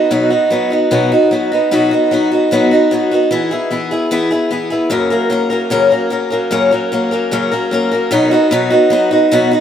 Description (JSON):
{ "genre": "country", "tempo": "150 BPM", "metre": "4/4", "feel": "straight", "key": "B major", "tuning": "A4 = 440 Hz", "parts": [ { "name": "picked swing-style acoustic guitar", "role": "solo", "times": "0.0-9.6 s", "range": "F#2 to A#4", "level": "-11 LUFS", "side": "equal", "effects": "none" } ], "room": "wet plate reverb, RT60 3.2 s", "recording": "heard from further back in the room", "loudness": "-12 LUFS", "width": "side -9 dB against mid", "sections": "0.0-8.1 A section; 8.1-9.6 B section", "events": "none", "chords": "0.0 B; 3.3 E; 4.9 F#; 8.1 B" }